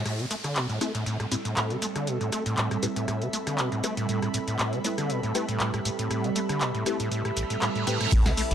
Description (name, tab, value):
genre	acid house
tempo	119 BPM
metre	4/4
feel	swing 54% on 16ths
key	A minor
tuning	A4 = 440 Hz
part	overdriven acid bass	riff	0.0-8.5 s	A1 to A3	-29 LUFS	equal	distortion, lush chorus, sidechain pumping
part	warbly tape-like pad	sustained chords	0.7-8.5 s	G3 to A4	-33 LUFS	right 5 dB	chorus, built-in reverb, phaser, sidechain pumping
part	booming analog drum machine	drums	0.1-8.5 s	crash cymbal, handclaps, hi-hat, rim click, shaker, snare drum	-31 LUFS	equal	none
part	downlifter, reverse cymbal and sub drop	sound effects	0.1-4.1, 7.4-8.5 s	none	-36 LUFS	right 2 dB	none
part	granular cloud pad	texture	1.2-8.5 s	A4 to B5	-35 LUFS	equal	built-in reverb, sidechain pumping
part	filtered dub chord stab	stabs	0.8-8.0 s	C4 to B4	-35 LUFS	left 4 dB	phaser, wide subtle chorus, cassette tape, dub echo
part	warm sub bass	bass	8.1-8.5 s	E1 to A1	-26 LUFS	equal	none
part	electronic kick drum	drums	8.1-8.2 s	none	-23 LUFS	equal	none
room	light reverb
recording	none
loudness	-25 LUFS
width	side -9 dB against mid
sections	0.1-8.1 A section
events	band accent 0.0; filter sweep on synth stab 0.1-8.1; reverse cymbal 7.4-8.1; impact 8.1-8.5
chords	0.1 Am7